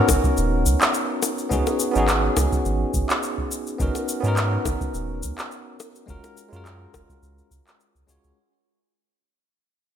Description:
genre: sunset chillout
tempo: 105 BPM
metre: 4/4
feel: swing 54% on 16ths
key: unclear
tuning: A4 = 439 Hz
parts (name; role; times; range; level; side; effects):
- bell-like tine electric piano; accompaniment; 0.0-8.4 s; G#3 to C#5; -24 LUFS; equal; auto-pan, digital delay
- warm sub bass; bass; 0.1-8.3 s; D#1 to G#2; -23 LUFS; equal; none
- electronic kick drum; drums; 0.1-8.1 s; none; -25 LUFS; right 1 dB; none
- electronic shaker and handclaps; drums; 0.1-8.3 s; none; -26 LUFS; equal; none
- bongos; percussion; 0.1-7.1 s; none; -30 LUFS; left 6 dB; none
room: moderate lush hall reverb, RT60 2.0 s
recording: bright 1980s-style digital production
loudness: -20 LUFS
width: side -9 dB against mid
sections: 0.0-8.4 A section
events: fade-out 0.0-8.4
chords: 0.0 G#m11 (rootless); 1.5 C#7sus4; 3.8 G#m11; 6.1 F#maj7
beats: 0.37 0.94 | 1.51 2.08 2.65 3.22 | 3.80 4.37 4.94 5.51 | 6.08 6.65 7.22 7.80

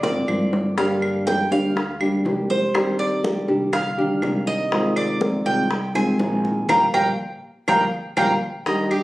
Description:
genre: latin, Cuban son and guajira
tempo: 122 BPM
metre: 4/4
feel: straight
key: unclear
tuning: A4 = 440 Hz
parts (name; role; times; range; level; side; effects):
- nylon-string guitar; accompaniment; 0.0-9.0 s; C3 to G4; -22 LUFS; equal; none
- Cuban tres; arpeggios; 0.0-9.0 s; Eb4 to Bb5; -23 LUFS; right 1 dB; none
- upright bass; bass; 0.0-8.4 s; Bb1 to Ab2; -30 LUFS; equal; none
- bongos; percussion; 0.0-9.0 s; none; -27 LUFS; left 2 dB; none
- congas; percussion; 0.0-9.0 s; none; -31 LUFS; equal; none
- claves; percussion; 0.3-9.0 s; none; -30 LUFS; equal; none
room: moderate studio ambience, RT60 0.4 s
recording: recorded on a phone in the room, studio reverb, compression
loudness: -19 LUFS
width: side -17 dB against mid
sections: 0.0-8.7 A section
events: Cuban tres solo 0.0-8.7; drum fill 0.0-0.8, 7.9-8.7; band accent 6.7-8.7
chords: 0.0 Bbadd9; 0.8 Gm; 2.8 Cmadd9; 4.7 Fm7/C; 6.7 Bb5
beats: 0.28 | 0.78 1.27 1.76 2.26 | 2.75 3.24 3.74 4.23 | 4.72 5.22 5.71 6.20 | 6.69 7.19 7.68 8.17 | 8.66

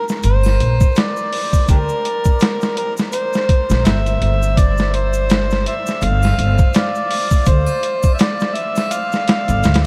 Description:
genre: trip hop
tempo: 83 BPM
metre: 4/4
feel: swing 57% on 16ths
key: G dorian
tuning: A4 = 441 Hz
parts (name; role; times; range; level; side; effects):
- overdriven harmonica; melody; 0.0-9.8 s; D4 to F5; -22 LUFS; equal; tape echo
- boom bap sampler-style drum kit; drums; 0.1-9.8 s; hi-hat, kick drum, snare drum; -20 LUFS; equal; none
- tube shaker and triangle; percussion; 0.1-9.9 s; none; -39 LUFS; equal; none
- upright bass; bass; 0.2-9.9 s; G1 to D2; -18 LUFS; equal; none
room: moderate huge ambient reverb, RT60 8.3 s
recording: dreamy mix soaked in reverb, vinyl crackle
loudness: -16 LUFS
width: mono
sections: 0.0-9.9 A section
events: none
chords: 0.0 Gm; 4.6 Dm7/G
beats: 0.23 0.96 | 1.68 2.40 3.12 3.85 | 4.57 5.29 6.02 6.74 | 7.46 8.19 8.91 9.63

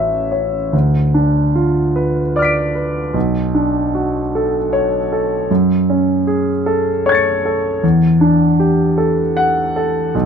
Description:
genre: classical, impressionist solo piano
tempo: 51 BPM (dotted quarters)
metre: 6/8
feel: rubato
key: unclear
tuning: A4 = 441 Hz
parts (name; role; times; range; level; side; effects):
- clear concert grand piano; solo; 0.0-10.3 s; A1 to D7; -13 LUFS; equal; none
room: light reverb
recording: close, detailed microphones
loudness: -13 LUFS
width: side -7 dB against mid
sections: 0.0-10.3 A section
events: none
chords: 0.0 A6; 0.7 Dm6; 3.2 Bm9; 5.5 F#madd9; 7.8 Em11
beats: | 0.73 1.96 | 3.15 4.34 | 5.50 6.65 | 7.83 8.97 | 10.14

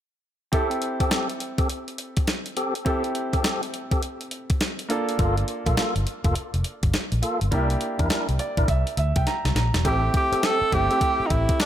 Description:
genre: R&B, new jack swing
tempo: 103 BPM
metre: 4/4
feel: swing 63% on 16ths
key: unclear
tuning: A4 = 439 Hz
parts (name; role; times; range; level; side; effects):
- clear baby grand piano; accompaniment; 0.5-11.7 s; A3 to Bb5; -29 LUFS; right 2 dB; none
- tonewheel organ; stabs; 0.5-11.0 s; Bb3 to Bb4; -29 LUFS; left 1 dB; overdrive, fast rotary speaker
- crisp 8-bit digital drum machine; drums; 0.5-11.7 s; hi-hat, kick drum, snare drum; -25 LUFS; equal; none
- vintage muted fingered electric bass; bass; 5.2-11.4 s; E1 to E2; -24 LUFS; equal; none
- breathy tenor saxophone; melody; 9.9-11.7 s; D4 to A4; -22 LUFS; right 1 dB; none
room: light reverb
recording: none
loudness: -21 LUFS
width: side -11 dB against mid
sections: 0.5-9.8 A section; 9.8-11.7 B section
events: grand piano fill 8.1-9.8; drum fill 9.3-9.8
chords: 0.5 Am7; 4.9 Gm9; 7.5 C9; 9.8 Am7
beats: | 0.53 1.11 1.70 2.28 | 2.86 3.44 4.03 4.61 | 5.19 5.77 6.36 6.94 | 7.52 8.10 8.69 9.27 | 9.85 10.43 11.02 11.60

